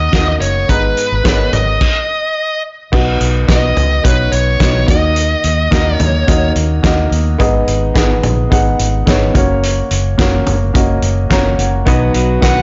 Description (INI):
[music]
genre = piano-driven pop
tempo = 107 BPM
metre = 4/4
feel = swing 56% on 16ths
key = unclear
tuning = A4 = 440 Hz
[part]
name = bluesy overdriven lead guitar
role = melody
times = 0.0-6.5, 12.4-12.6 s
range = B4 to F#5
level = -19 LUFS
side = equal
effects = distortion
[part]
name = warm baby grand piano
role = accompaniment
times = 0.0-12.6 s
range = G#2 to A#5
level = -19 LUFS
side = equal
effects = none
[part]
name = vintage muted fingered electric bass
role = bass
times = 0.0-12.6 s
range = F#1 to D#2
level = -18 LUFS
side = equal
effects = none
[part]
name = loose indie drum kit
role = drums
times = 0.1-12.6 s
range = crash cymbal, hi-hat, kick drum, snare drum, toms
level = -18 LUFS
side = equal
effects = none
[part]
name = direct-recorded clean electric guitar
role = riff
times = 11.9-12.6 s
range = B2 to B4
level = -19 LUFS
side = equal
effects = none
[sound]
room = light reverb, studio reverb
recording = blown-out, overdriven recording, overdrive, nothing above 7.7 kHz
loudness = -13 LUFS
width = mono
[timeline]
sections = 0.0-2.9 A section; 2.9-12.6 B section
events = stop 1.8-2.9; grand piano fill 11.0-11.9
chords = 0.0 D#m; 0.7 G#madd9; 1.8 N.C.; 2.9 B; 4.9 D#m; 7.4 G#m; 9.4 F#; 11.9 B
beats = 0.14 | 0.69 1.25 1.81 2.37 | 2.93 3.49 4.05 4.61 | 5.17 5.72 6.28 6.84 | 7.40 7.96 8.52 9.07 | 9.63 10.19 10.75 11.31 | 11.87 12.43